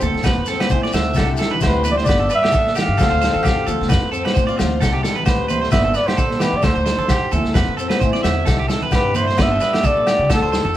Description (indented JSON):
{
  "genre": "highlife guitar band",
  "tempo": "132 BPM",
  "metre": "4/4",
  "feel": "swing 55% on 16ths",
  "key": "C major",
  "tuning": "A4 = 440 Hz",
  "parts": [
    { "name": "trumpet with bucket mute", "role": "melody", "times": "0.0-10.8 s", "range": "A4 to F5", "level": "-19 LUFS", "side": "equal", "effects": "none" },
    { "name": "picked steel-string acoustic guitar", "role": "accompaniment", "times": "0.0-10.8 s", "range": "G2 to B4", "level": "-26 LUFS", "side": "left 3 dB", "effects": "none" },
    { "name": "electric guitar at the edge of break-up", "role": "arpeggios", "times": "0.0-10.7 s", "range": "G4 to E5", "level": "-24 LUFS", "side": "right 4 dB", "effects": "none" },
    { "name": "upright bass", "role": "bass", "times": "0.0-10.8 s", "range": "G1 to A2", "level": "-23 LUFS", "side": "equal", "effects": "none" },
    { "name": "congas", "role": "percussion", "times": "0.0-10.7 s", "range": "none", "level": "-28 LUFS", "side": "right 2 dB", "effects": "none" },
    { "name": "shekere", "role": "percussion", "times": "0.0-10.6 s", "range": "none", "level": "-27 LUFS", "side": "left 2 dB", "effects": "none" },
    { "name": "vintage drum kit", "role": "drums", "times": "0.2-10.6 s", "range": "kick drum, snare drum", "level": "-21 LUFS", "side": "equal", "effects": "none" },
    { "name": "agogo bells", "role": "percussion", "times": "0.2-10.4 s", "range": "none", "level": "-29 LUFS", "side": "left 2 dB", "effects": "none" }
  ],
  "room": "moderate stone room reverb, RT60 1.1 s",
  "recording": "band playing live in one room",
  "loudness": "-15 LUFS",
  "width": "side -13 dB against mid",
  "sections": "0.0-10.8 A section",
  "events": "none",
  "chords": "0.2 Fmaj7; 1.2 Cadd9; 2.1 G; 3.0 Dm7; 3.9 F; 4.8 Csus2; 5.7 G; 6.6 Dm7; 7.5 Fmaj7; 8.5 C5; 9.4 G",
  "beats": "0.25 0.71 | 1.16 1.62 2.07 2.53 | 2.99 3.44 3.90 4.35 | 4.81 5.27 5.72 6.18 | 6.63 7.09 7.55 8.01 | 8.46 8.92 9.38 9.84 | 10.29 10.75"
}